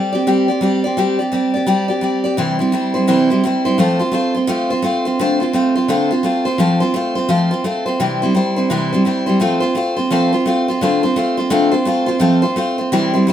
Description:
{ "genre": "country", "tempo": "171 BPM", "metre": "4/4", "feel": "swing 62% on 8ths", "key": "C major", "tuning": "A4 = 436 Hz", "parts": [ { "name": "picked steel-string acoustic guitar", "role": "solo", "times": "0.0-13.3 s", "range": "C3 to D5", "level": "-14 LUFS", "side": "equal", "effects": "none" } ], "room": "moderate studio ambience, RT60 0.5 s", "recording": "minimal, uncompressed stereo recording", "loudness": "-14 LUFS", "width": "side -10 dB against mid", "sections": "0.0-2.4 A section; 2.4-13.3 B section", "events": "none", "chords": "0.0 Gsus4; 2.4 C; 3.8 F; 5.2 Dm7; 6.6 F; 8.0 C; 9.4 F; 10.8 Dm7; 12.2 F" }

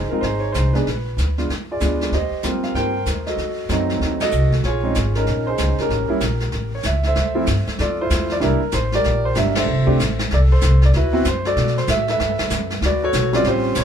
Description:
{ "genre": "jazz piano trio", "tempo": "191 BPM", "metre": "4/4", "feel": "swing 63% on 8ths", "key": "unclear", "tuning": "A4 = 440 Hz", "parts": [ { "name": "warm grand piano", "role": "melody", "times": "0.0-13.8 s", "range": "F3 to G5", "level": "-21 LUFS", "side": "right 1 dB", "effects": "none" }, { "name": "upright bass", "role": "bass", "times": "0.0-13.8 s", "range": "F1 to B2", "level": "-20 LUFS", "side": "equal", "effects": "none" }, { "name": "jazz brush drum kit", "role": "drums", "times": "0.2-13.8 s", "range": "brushed snare drum, hi-hat, kick drum, ride cymbal, snare drum", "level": "-26 LUFS", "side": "equal", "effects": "none" } ], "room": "light reverb", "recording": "band playing live in one room, lossy compression artefacts", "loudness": "-17 LUFS", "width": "side -8 dB against mid", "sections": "0.0-7.2 A section; 7.2-13.8 B section", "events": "band accent 4.2, 9.5", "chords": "0.0 Fm7 (rootless); 0.9 Bb7b9; 2.1 Eb6; 3.4 F7b9; 4.6 Bbm11; 5.9 A7b9; 7.2 Dm9; 8.4 C9; 9.7 F; 10.9 D13; 12.2 Gmaj9" }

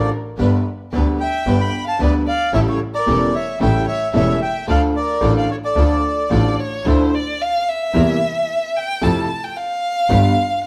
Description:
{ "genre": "tango", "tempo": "111 BPM", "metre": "4/4", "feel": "rubato", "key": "D harmonic minor, D minor from 6.9 s", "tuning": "A4 = 440 Hz", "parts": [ { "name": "bandoneon", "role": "melody", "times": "0.0-6.6 s", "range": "C#5 to B5", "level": "-23 LUFS", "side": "equal", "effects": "none" }, { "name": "warm violin", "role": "second line", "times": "0.0-10.7 s", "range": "A4 to A5", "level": "-25 LUFS", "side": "equal", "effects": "none" }, { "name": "clear upright piano", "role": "accompaniment", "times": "0.0-10.3 s", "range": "E1 to G4", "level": "-23 LUFS", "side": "equal", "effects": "none" }, { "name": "clear symphonic string section", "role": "stabs", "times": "0.0-10.3 s", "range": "B3 to B4", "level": "-33 LUFS", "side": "equal", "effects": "none" }, { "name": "clear double bass", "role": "bass", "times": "0.0-10.3 s", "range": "E1 to F2", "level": "-22 LUFS", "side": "equal", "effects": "none" } ], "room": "wet stone room reverb, RT60 1.2 s", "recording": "band playing live in one room", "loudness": "-18 LUFS", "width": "mono", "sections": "0.0-6.9 A section; 6.9-10.7 B section", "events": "violin solo 6.9-10.7", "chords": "0.4 G; 2.5 A7; 4.7 Dm; 6.9 Dmadd9; 7.9 C7/E; 9.0 Fmaj7; 10.1 G7" }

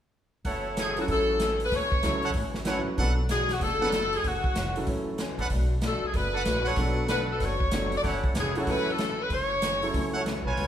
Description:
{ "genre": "jazz, big band swing", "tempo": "190 BPM", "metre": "4/4", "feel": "swing 64% on 8ths", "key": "F# minor", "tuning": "A4 = 440 Hz", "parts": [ { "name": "picked old ladder-braced acoustic guitar", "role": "accompaniment", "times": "0.4-10.7 s", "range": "F#2 to F#4", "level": "-36 LUFS", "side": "left 4 dB", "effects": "none" }, { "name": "bright trumpet section", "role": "stabs", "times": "0.4-10.7 s", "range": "D4 to G#5", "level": "-33 LUFS", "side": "right 2 dB", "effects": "none" }, { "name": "upright bass", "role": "bass", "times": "0.4-10.7 s", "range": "E#1 to C#2", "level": "-31 LUFS", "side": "equal", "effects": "none" }, { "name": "swinging big-band drum kit", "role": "drums", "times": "0.4-10.7 s", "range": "hi-hat, kick drum, snare drum", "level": "-32 LUFS", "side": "right 1 dB", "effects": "none" }, { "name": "bright saxophone section", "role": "melody", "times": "0.8-10.2 s", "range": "F#4 to D5", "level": "-28 LUFS", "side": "left 1 dB", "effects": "none" }, { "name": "warm grand piano", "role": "accompaniment", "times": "1.0-10.2 s", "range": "F#3 to B4", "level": "-33 LUFS", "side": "right 2 dB", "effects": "none" } ], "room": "wet recital hall reverb, RT60 1.5 s", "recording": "recorded in a church or concert hall", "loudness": "-24 LUFS", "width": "side -10 dB against mid", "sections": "0.4-10.7 A section", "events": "none", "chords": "0.4 F#m7; 3.0 Bm7; 4.2 F#m7; 5.5 Bm7; 8.0 F#m7" }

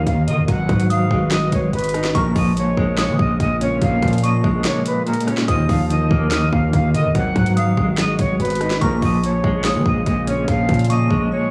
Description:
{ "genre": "hip hop, trap", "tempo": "144 BPM", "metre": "4/4", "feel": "half-time", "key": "unclear", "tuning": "A4 = 440 Hz", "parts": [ { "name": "delicate synth tine bell", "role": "second line", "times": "0.0-11.3 s", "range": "Db6 to F6", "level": "-30 LUFS", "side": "equal", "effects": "chorus, tape echo" }, { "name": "clean electric guitar", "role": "accompaniment", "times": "0.0-11.5 s", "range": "Ab2 to Eb5", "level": "-23 LUFS", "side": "equal", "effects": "tremolo, low-pass filter" }, { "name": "hollow soft pad", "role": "sustained chords", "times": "0.0-11.5 s", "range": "Db3 to Cb5", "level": "-30 LUFS", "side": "equal", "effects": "chorus" }, { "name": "distorted 808-style bass", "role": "bass", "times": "0.0-11.3 s", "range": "Ab1 to F3", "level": "-24 LUFS", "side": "equal", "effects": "distortion" }, { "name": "jazz flute", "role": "melody", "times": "0.1-11.5 s", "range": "Bb4 to Gb5", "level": "-27 LUFS", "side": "equal", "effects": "low-pass filter, tape echo" }, { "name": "trap drum kit", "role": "drums", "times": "0.1-11.2 s", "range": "handclaps, hi-hat, kick drum, rim click, snare drum", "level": "-25 LUFS", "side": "equal", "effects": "none" }, { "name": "chorused polysynth", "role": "stabs", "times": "0.5-10.8 s", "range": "Db2 to Gb3", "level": "-30 LUFS", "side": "equal", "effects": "none" } ], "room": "little or no reverb", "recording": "dry, gritty hardware recording, transformer saturation, cassette tape, studio ambience", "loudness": "-18 LUFS", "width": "mono", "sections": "0.0-11.5 A section", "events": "break 4.7-5.5, 11.3", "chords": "0.5 Abm7; 2.1 Bbm7; 5.5 Ebsus2; 7.2 Abm7; 8.8 Bbm7" }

